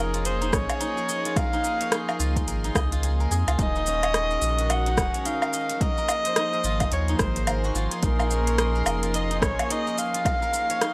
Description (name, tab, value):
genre	organic downtempo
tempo	108 BPM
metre	4/4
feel	swing 60% on 16ths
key	Eb dorian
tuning	A4 = 441 Hz
part	warm kamancheh	melody	0.0-10.9 s	Bb4 to Gb5	-30 LUFS	equal	analog delay
part	warm studio string section	sustained chords	0.0-10.9 s	Eb3 to C6	-35 LUFS	equal	sidechain pumping
part	steel-string zither	arpeggios	0.0-10.9 s	Db4 to Eb5	-34 LUFS	equal	analog delay
part	warm sub bass	bass	0.0-9.6 s	Eb1 to F2	-29 LUFS	equal	tube saturation, sidechain pumping
part	deep house drum kit	drums	0.1-10.9 s	hi-hat, rim click, shaker, woodblock	-29 LUFS	equal	overdrive
part	electronic kick drum	drums	0.5-10.4 s	none	-30 LUFS	equal	overdrive
room	small room ambience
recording	dry, gritty hardware recording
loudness	-25 LUFS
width	mono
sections	0.0-10.9 A section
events	none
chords	0.0 Bbm7; 1.4 Dbmaj7; 3.6 Ebmadd9; 5.8 Ab7; 8.0 Bbm7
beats	0.25 0.81 | 1.36 1.92 2.48 3.03 | 3.59 4.14 4.70 5.25 | 5.81 6.37 6.92 7.48 | 8.03 8.59 9.14 9.70 | 10.25 10.81